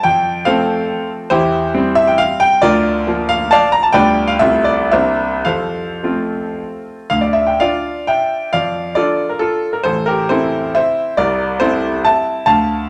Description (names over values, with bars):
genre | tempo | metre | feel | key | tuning
classical, romantic triple-time dance for piano with dotted rhythms | 102-154 BPM | 3/4 | rubato | F major, D minor from 7.1 s | A4 = 440 Hz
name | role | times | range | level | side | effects
clear concert grand piano | solo | 0.0-12.9 s | A1 to Bb5 | -16 LUFS | equal | none
room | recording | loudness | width
wet large studio reverb, RT60 1.1 s | none | -15 LUFS | mono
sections
0.0-7.1 A section; 7.1-12.9 B section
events
none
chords
0.0 F; 1.3 C/E; 2.6 Bb/D; 3.9 G7/D; 4.4 F/C; 4.9 C9; 5.5 F; 7.1 Dm; 8.5 Dm/F; 9.9 Am; 11.2 Am/C